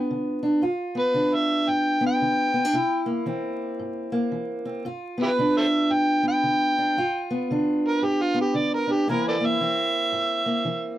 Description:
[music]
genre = acoustic country blues, solo or duo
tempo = 114 BPM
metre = 4/4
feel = swing 61% on 8ths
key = G mixolydian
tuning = A4 = 445 Hz
[part]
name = overdriven harmonica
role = melody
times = 0.0-11.0 s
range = E4 to G5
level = -23 LUFS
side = equal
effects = none
[part]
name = fingerpicked steel-string acoustic guitar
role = accompaniment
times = 0.0-11.0 s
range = G2 to F4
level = -24 LUFS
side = equal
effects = none
[sound]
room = moderate booth ambience, RT60 0.2 s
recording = vinyl crackle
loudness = -21 LUFS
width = side -13 dB against mid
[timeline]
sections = 0.6-11.0 A section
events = harmonica solo 0.6-11.0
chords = 0.0 G7 (rootless); 0.6 G7; 2.7 C7; 4.9 G7; 9.1 C7

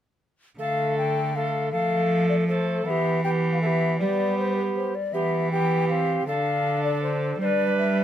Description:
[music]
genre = classical, renaissance-style consort dance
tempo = 159 BPM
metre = 3/4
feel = straight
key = D dorian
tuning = A4 = 440 Hz
[part]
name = mellow hollow silver concert flute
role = melody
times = 0.6-8.0 s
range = B4 to G5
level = -27 LUFS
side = left 4 dB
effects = none
[part]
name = tenor recorder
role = second line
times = 0.6-8.0 s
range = G4 to C5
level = -28 LUFS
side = right 3 dB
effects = none
[part]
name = brilliant trombone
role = accompaniment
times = 0.6-8.0 s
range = A3 to D4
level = -30 LUFS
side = left 3 dB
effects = none
[part]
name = rich cello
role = bass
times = 0.6-8.0 s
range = D3 to G3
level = -26 LUFS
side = right 2 dB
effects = none
[sound]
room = moderate stone room reverb, RT60 1.1 s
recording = none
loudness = -22 LUFS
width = side -10 dB against mid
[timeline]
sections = 0.6-8.0 A section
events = none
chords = 0.6 Dm; 1.7 F; 2.9 Em; 4.0 G; 5.1 Em; 6.3 Dm; 7.4 G

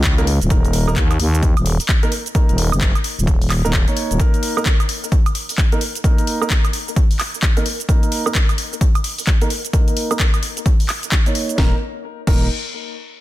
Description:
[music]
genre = bass house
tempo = 130 BPM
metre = 4/4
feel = swing 62% on 16ths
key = unclear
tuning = A4 = 442 Hz
[part]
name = growling FM bass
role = bass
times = 0.0-4.2, 11.6-12.5 s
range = Eb1 to Eb2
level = -18 LUFS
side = equal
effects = tube saturation, sidechain pumping
[part]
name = electronic kick drum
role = drums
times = 0.0-12.4 s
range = none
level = -16 LUFS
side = equal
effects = studio reverb
[part]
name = house drum kit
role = drums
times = 0.0-12.4 s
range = crash cymbal, handclaps, hi-hat, shaker, snare drum, woodblock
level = -23 LUFS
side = equal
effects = studio reverb
[part]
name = dark concert grand piano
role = stabs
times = 0.2-12.5 s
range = Bb3 to Db5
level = -25 LUFS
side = right 2 dB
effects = sidechain pumping, low-pass filter, ping-pong delay
[sound]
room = little or no reverb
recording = dense, heavily limited modern master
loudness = -15 LUFS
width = side -15 dB against mid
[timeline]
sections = 0.0-11.6 A section; 11.6-13.2 B section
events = filter sweep on grand piano 0.0-11.6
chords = 0.0 Eb5

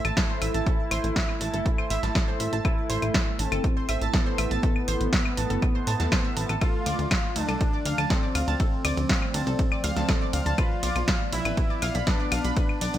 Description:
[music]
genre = melodic techno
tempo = 121 BPM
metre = 4/4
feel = straight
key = A minor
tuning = A4 = 442 Hz
[part]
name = fat analog lead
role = melody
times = 0.0-13.0 s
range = B3 to F4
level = -32 LUFS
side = equal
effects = chorus, ping-pong delay
[part]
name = dark analog pad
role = sustained chords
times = 0.0-13.0 s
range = F3 to D5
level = -34 LUFS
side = equal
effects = chorus, phaser, sidechain pumping
[part]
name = analog pluck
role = arpeggios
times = 0.0-12.9 s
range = A4 to A6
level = -32 LUFS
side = right 2 dB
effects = chorus, sidechain pumping, digital delay
[part]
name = plucky analog bass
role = bass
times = 0.0-13.0 s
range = G1 to A2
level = -28 LUFS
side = equal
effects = sidechain pumping
[part]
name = punchy analog drum machine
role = drums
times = 0.0-13.0 s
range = claves, hi-hat, ride cymbal, snare drum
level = -30 LUFS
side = equal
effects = sidechain pumping on hats, sidechain pumping on perc, sidechain pumping on cymbals, gated reverb
[part]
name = electronic kick drum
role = drums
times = 0.2-12.7 s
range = none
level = -25 LUFS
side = equal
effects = none
[sound]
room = light reverb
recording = bright 1980s-style digital production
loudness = -23 LUFS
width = side -12 dB against mid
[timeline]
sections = 0.0-13.0 A section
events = none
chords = 0.0 Am; 6.6 Dm; 10.6 Bdim

